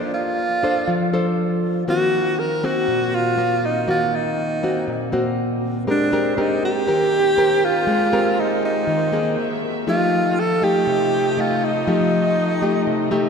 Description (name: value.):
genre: bossa nova.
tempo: 120 BPM.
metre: 4/4.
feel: straight.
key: unclear.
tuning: A4 = 444 Hz.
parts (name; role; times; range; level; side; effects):
clear alto saxophone; melody; 0.0-13.3 s; D4 to Bb4; -20 LUFS; right 1 dB; none.
nylon-string guitar; accompaniment; 0.0-13.3 s; Bb2 to C5; -21 LUFS; left 1 dB; none.
warm studio violin section; sustained chords; 5.9-13.3 s; A3 to Fb5; -29 LUFS; equal; none.
room: wet cathedral reverb, RT60 4.4 s.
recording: recorded in a church or concert hall.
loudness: -17 LUFS.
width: side -6 dB against mid.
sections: 0.0-13.3 A section.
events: none.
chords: 0.0 Bbmaj9; 1.9 Ebm6; 5.9 Abmaj9; 9.4 Gb9; 9.9 F9.